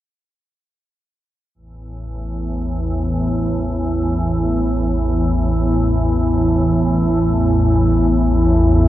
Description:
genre	ambient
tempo	free time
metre	none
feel	none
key	unclear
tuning	A4 = 440 Hz
part	organ-like drone	solo	1.9-8.9 s	A1 to E2	-15 LUFS	equal	ensemble chorus, built-in reverb, diffuse ambient delay
room	wet huge ambient reverb, RT60 7.8 s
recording	worn, warbling old tape, cassette tape, warbly pitch drift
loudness	-15 LUFS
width	side -14 dB against mid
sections	1.6-8.9 A section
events	none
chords	1.6 A5

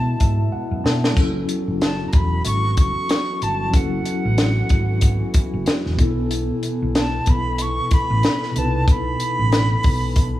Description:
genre	lush 1970s-style soul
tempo	93 BPM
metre	4/4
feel	swing 58% on 16ths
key	F# minor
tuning	A4 = 440 Hz
part	concert flute	melody	0.0-10.4 s	F#5 to C#6	-25 LUFS	equal	none
part	mellow tine electric piano	accompaniment	0.0-10.4 s	B2 to A5	-26 LUFS	left 1 dB	medium stereo tremolo
part	dark French horn section	sustained chords	0.0-10.4 s	B2 to A4	-32 LUFS	right 1 dB	none
part	hollow-body short-scale fingered electric bass	bass	0.0-10.3 s	E1 to B2	-22 LUFS	equal	none
part	compact cocktail drum kit	drums	0.2-10.3 s	hi-hat, kick drum, snare drum, splash cymbal	-18 LUFS	equal	none
room	studio ambience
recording	small room ambience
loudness	-17 LUFS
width	side -14 dB against mid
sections	0.0-10.4 A section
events	tine electric piano fill 0.0-1.2; drum fill 0.5-1.2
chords	0.0 B7sus4; 1.2 F#m7; 6.0 B7sus4

